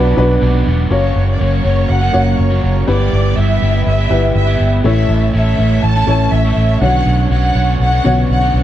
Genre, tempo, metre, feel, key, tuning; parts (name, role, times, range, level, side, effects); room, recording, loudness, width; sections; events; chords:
piano-driven pop; 122 BPM; 4/4; straight; B minor; A4 = 440 Hz
warm studio violin section; melody; 0.0-8.6 s; D4 to A5; -19 LUFS; equal
clear upright piano; accompaniment; 0.0-8.6 s; G2 to C#5; -19 LUFS; left 2 dB
sweeping resonant pad; sustained chords; 0.0-8.6 s; D3 to D6; -26 LUFS; equal; chorus
crunchy overdriven guitar; riff; 0.0-8.6 s; F#2 to A4; -21 LUFS; right 6 dB
vintage muted fingered electric bass; bass; 0.0-8.6 s; E1 to B1; -14 LUFS; equal
light reverb, small room ambience; dark, warm production; -11 LUFS; side -12 dB against mid
0.9-8.6 A section
0.0 Bm; 0.9 F#; 2.9 Em/G; 4.8 A; 6.8 Bmadd9